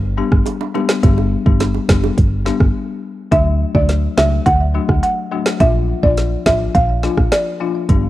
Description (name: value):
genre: dancehall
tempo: 105 BPM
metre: 4/4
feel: straight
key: D major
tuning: A4 = 440 Hz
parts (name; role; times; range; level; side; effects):
- woody FM bass; bass; 0.0-8.1 s; F#1 to D2; -16 LUFS; equal; tube saturation
- folk marimba with medium mallets; accompaniment; 0.2-8.1 s; F3 to G4; -21 LUFS; left 7 dB; sidechain pumping, cassette tape
- afro-pop drum kit; drums; 0.3-8.0 s; hi-hat, kick drum, rim click, snare drum; -16 LUFS; equal; none
- bongos; percussion; 0.5-2.2 s; none; -24 LUFS; right 10 dB; none
- buzzing marimba with medium mallets; melody; 3.3-7.7 s; D5 to F#5; -18 LUFS; right 1 dB; cassette tape, tape echo
room: small room ambience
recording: home recording on cassette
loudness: -13 LUFS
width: side -15 dB against mid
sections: 0.0-3.3 A section; 3.3-8.1 B section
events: break 2.7-3.3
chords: 0.0 G; 3.3 D; 5.6 Bb